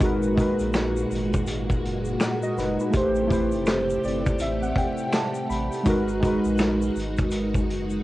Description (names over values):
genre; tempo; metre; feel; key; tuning
lo-fi hip hop; 82 BPM; 4/4; swing 61% on 16ths; G# minor; A4 = 440 Hz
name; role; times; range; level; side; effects
warbly lo-fi synth keys; accompaniment; 0.0-8.0 s; G#3 to B5; -24 LUFS; equal; chorus, cassette tape, low-pass filter, plate reverb
string machine, full ensemble; sustained chords; 0.0-8.0 s; A#2 to G4; -30 LUFS; equal; ensemble chorus, low-pass filter, cassette tape, plate reverb
sub bass with octave; bass; 0.0-8.0 s; F#1 to A#1; -32 LUFS; equal; none
vintage drum kit; drums; 0.0-7.9 s; finger snaps, hi-hat, kick drum, snare drum; -26 LUFS; equal; cassette tape
egg shaker; percussion; 0.0-8.0 s; none; -48 LUFS; left 7 dB; none
room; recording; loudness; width
moderate booth ambience, RT60 0.2 s; home recording on cassette, vinyl crackle, nothing above 10.3 kHz; -22 LUFS; side -16 dB against mid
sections
0.0-8.0 A section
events
synth keys fill 3.7-5.9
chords
0.0 G#m9; 2.9 Am9; 5.9 G#m9